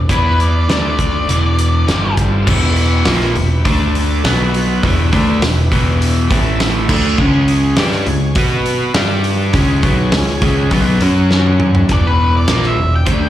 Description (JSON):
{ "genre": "classic rock", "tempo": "102 BPM", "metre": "4/4", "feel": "straight", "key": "E dorian", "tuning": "A4 = 440 Hz", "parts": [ { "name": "overdriven electric guitar", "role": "riff", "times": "0.0-13.3 s", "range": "E2 to B4", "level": "-17 LUFS", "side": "equal", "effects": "slapback echo" }, { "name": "overdriven picked electric bass", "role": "bass", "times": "0.0-13.3 s", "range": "E1 to B2", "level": "-15 LUFS", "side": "equal", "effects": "none" }, { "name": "octave-fuzz lead guitar", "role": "melody", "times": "0.1-2.1, 11.9-13.3 s", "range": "B4 to G5", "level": "-19 LUFS", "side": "left 2 dB", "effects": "distortion, slapback echo" }, { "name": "big rock drum kit", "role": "drums", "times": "0.1-13.2 s", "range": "crash cymbal, hi-hat, kick drum, snare drum, toms", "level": "-18 LUFS", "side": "equal", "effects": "none" }, { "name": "bright tonewheel organ", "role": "sustained chords", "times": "2.2-11.9 s", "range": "A3 to F#5", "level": "-26 LUFS", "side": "equal", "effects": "slow rotary speaker, overdrive, chorus vibrato" } ], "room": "small room ambience", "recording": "live gig heard through the venue's PA, club reverb", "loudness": "-12 LUFS", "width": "side -12 dB against mid", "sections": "0.0-2.5 A section; 2.5-11.9 B section; 11.9-13.3 C section", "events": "drum fill 11.3-11.9; lead electric guitar solo 11.9-13.3", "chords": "0.0 E5; 0.7 D5; 1.3 E5; 1.9 G5; 2.5 Em; 3.7 D5; 4.2 B5; 4.8 Em; 6.3 A5; 6.9 D5; 7.2 C#5; 8.4 B5; 9.0 G5; 9.5 C#5; 11.0 F#5; 11.9 E5", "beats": "| 0.10 0.69 1.29 1.88 | 2.47 3.07 3.66 4.25 | 4.84 5.42 6.01 6.60 | 7.19 7.78 8.37 8.96 | 9.54 10.13 10.72 11.31 | 11.90 12.49 13.08" }